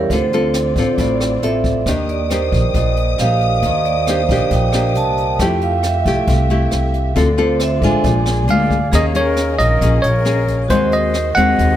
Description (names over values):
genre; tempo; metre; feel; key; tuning
bossa nova; 136 BPM; 4/4; straight; unclear; A4 = 439 Hz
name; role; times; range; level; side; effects
nylon-string guitar; accompaniment; 0.0-11.8 s; A2 to A4; -20 LUFS; left 4 dB; none
vibraphone with medium hard mallets; accompaniment; 0.0-11.8 s; E4 to A5; -20 LUFS; right 6 dB; none
dark studio string section; sustained chords; 0.0-11.8 s; Ab3 to Eb6; -27 LUFS; left 4 dB; none
upright bass; bass; 0.0-11.8 s; A1 to F2; -18 LUFS; equal; none
jazz brush drum kit; drums; 0.1-11.7 s; hi-hat, kick drum, rim click; -23 LUFS; equal; none
bell-like tine electric piano; melody; 8.5-11.8 s; C5 to Gb5; -17 LUFS; right 2 dB; none
breathy jazz flute; second line; 8.5-11.8 s; Ab4 to Eb5; -26 LUFS; left 5 dB; none
room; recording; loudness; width
little or no reverb; close, detailed microphones; -13 LUFS; side -11 dB against mid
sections
0.0-8.9 A section; 8.9-11.8 B section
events
vibraphone solo 0.0-8.9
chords
0.1 Dm7; 1.9 Ebmaj7; 5.4 Fmaj9; 7.2 Dm7; 8.1 Bb7; 8.9 Eb7sus4; 10.7 Ab7/Eb